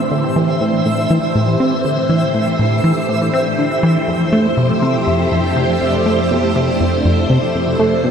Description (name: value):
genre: ambient, sequencer-driven space music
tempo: 121 BPM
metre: 4/4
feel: straight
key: A minor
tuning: A4 = 441 Hz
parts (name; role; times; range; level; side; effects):
- phased string machine; sustained chords; 0.0-8.1 s; F2 to C5; -17 LUFS; equal; ensemble chorus, phaser, shimmer reverb
- twinkling granular texture; texture; 0.0-8.1 s; E5; -23 LUFS; right 1 dB; built-in reverb, shimmer reverb
- plucky analog bass; riff; 0.1-8.1 s; F2 to C4; -16 LUFS; equal; analog delay, shimmer reverb
room: wet cathedral reverb, RT60 7.5 s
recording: in a vast, echoing space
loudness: -13 LUFS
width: side -7 dB against mid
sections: 0.0-8.1 A section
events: none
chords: 0.0 Am7; 4.1 Fmaj7